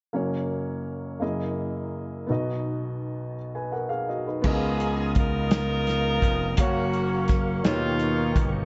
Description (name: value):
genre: slow gospel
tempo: 56 BPM (dotted quarters)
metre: 6/8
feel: straight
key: F# major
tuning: A4 = 441 Hz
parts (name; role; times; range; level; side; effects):
- dark upright piano; accompaniment; 0.1-8.7 s; F#1 to G#5; -31 LUFS; equal; none
- mellow tonewheel organ; sustained chords; 4.4-8.7 s; B3 to D#6; -36 LUFS; equal; fast rotary speaker, chorus vibrato
- gritty slap bass; bass; 4.4-8.7 s; E#1 to D#2; -30 LUFS; equal; overdrive
- warm soul drum kit; drums; 4.4-8.5 s; crash cymbal, hi-hat, kick drum, snare drum; -27 LUFS; equal; none
- bright saxophone section; melody; 4.5-8.7 s; A#3 to A#4; -31 LUFS; equal; none
room: light reverb, small room ambience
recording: dark, warm production, nothing above 7.8 kHz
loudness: -26 LUFS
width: mono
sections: 0.1-4.4 A section; 4.4-8.7 B section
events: none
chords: 0.1 F#; 1.2 F#13; 2.3 B; 4.4 C#13; 6.6 F#maj7; 7.6 D#7b13